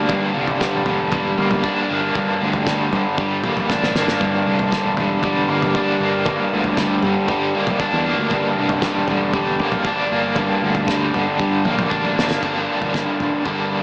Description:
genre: psychedelic rock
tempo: 117 BPM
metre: 4/4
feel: straight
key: G dorian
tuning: A4 = 440 Hz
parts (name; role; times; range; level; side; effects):
- crunchy overdriven guitar; riff; 0.0-13.8 s; G2 to D4; -21 LUFS; equal; tremolo, analog delay
- fingered electric bass; bass; 0.0-13.8 s; E1 to G2; -29 LUFS; equal; none
- analog drone; drone; 0.0-12.5 s; G2 to G3; -32 LUFS; equal; none
- cloth-damped thuddy drum kit; drums; 0.1-13.6 s; crash cymbal, kick drum, snare drum, toms; -27 LUFS; equal; analog delay
room: light reverb, studio ambience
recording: echo-heavy mix, small speaker sound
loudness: -20 LUFS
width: mono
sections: 0.0-12.4 A section; 12.4-13.8 B section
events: drum fill 3.7-4.2, 11.9-12.4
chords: 0.0 Gm

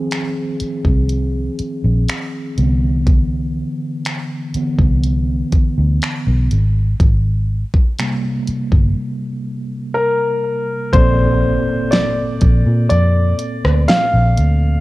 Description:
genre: contemporary R&B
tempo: 61 BPM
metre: 4/4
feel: straight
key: Bb major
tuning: A4 = 440 Hz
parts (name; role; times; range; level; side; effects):
- mellow tine electric piano; accompaniment; 0.0-14.8 s; Bb2 to D5; -21 LUFS; equal; medium stereo tremolo
- smooth R&B drum kit; drums; 0.1-14.6 s; finger snaps, hi-hat, kick drum, rim click, snare drum; -16 LUFS; equal; cassette tape
- vintage muted fingered electric bass; bass; 0.6-14.8 s; G1 to Bb2; -15 LUFS; equal; none
- warm concert grand piano; melody; 9.9-14.8 s; Bb4 to F5; -19 LUFS; left 1 dB; cassette tape, tape echo
- impact; sound effects; 11.1-14.8 s; none; -28 LUFS; equal; none
room: little or no reverb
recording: home recording on cassette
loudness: -14 LUFS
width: side -18 dB against mid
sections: 0.0-10.9 A section; 10.9-14.8 B section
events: tine electric piano solo 0.0-10.9; break 9.0-10.9; impact 10.9-14.8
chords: 0.0 Dbmaj9 (rootless); 2.6 Cmaj9; 6.5 Abmaj9; 10.9 Bbmaj9

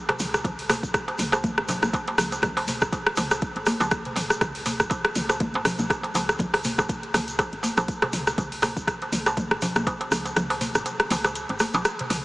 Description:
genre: afro house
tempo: 121 BPM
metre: 4/4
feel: swing 56% on 16ths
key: unclear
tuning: A4 = 440 Hz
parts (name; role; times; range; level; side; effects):
- deep house drum kit; drums; 0.1-12.2 s; hi-hat, rim click, toms; -25 LUFS; equal; overdrive
- darbuka; percussion; 0.1-12.2 s; none; -30 LUFS; right 1 dB; none
- woody FM bass; bass; 0.2-12.2 s; G#1 to C#2; -35 LUFS; equal; sidechain pumping
- egg shaker; percussion; 0.2-12.2 s; none; -36 LUFS; equal; none
- electronic kick drum; drums; 0.4-10.0 s; none; -30 LUFS; equal; none
- congas; percussion; 0.7-11.8 s; none; -32 LUFS; left 1 dB; none
room: wet huge ambient reverb, RT60 4.7 s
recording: dreamy mix soaked in reverb, small speaker sound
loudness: -22 LUFS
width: side -20 dB against mid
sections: 0.0-12.2 A section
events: kick drops out 10.4-12.2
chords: none

